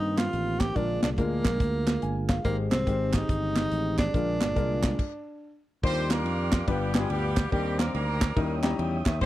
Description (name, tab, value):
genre	uptempo gospel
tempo	142 BPM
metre	4/4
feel	swing 64% on 8ths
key	Eb major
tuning	A4 = 441 Hz
part	breathy tenor saxophone	melody	0.0-5.6 s	Bb3 to G4	-30 LUFS	equal	slapback echo
part	mellow tonewheel organ	sustained chords	0.0-9.3 s	D3 to Eb6	-35 LUFS	right 3 dB	slow rotary speaker
part	fingered electric bass	bass	0.0-9.3 s	G1 to G2	-30 LUFS	equal	none
part	tight funk drum kit	drums	0.2-9.3 s	crash cymbal, hi-hat, kick drum, ride cymbal, snare drum	-27 LUFS	equal	none
part	group handclap	percussion	0.2-9.1 s	none	-37 LUFS	right 8 dB	none
part	warm concert grand piano	accompaniment	0.8-9.3 s	G2 to Bb5	-32 LUFS	left 5 dB	none
part	clear horn section	melody	5.8-9.3 s	G3 to C5	-31 LUFS	equal	none
room	little or no reverb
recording	dry, close 1970s-style studio recording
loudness	-24 LUFS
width	side -15 dB against mid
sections	0.0-5.8 A section; 5.8-9.3 B section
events	grand piano fill 1.8-2.4, 8.4-9.2; stop 5.0-5.8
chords	0.0 Cm7; 0.8 Bb7; 2.4 Abmaj7; 4.1 Bb7; 5.8 Ebmaj9; 6.7 G7; 7.5 Cm9/Eb; 8.4 Eb7b9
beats	0.33 | 0.75 1.18 1.60 2.02 | 2.45 2.87 3.30 3.72 | 4.14 4.57 4.99 5.41 | 5.84 6.26 6.68 7.10 | 7.53 7.95 8.37 8.79 | 9.21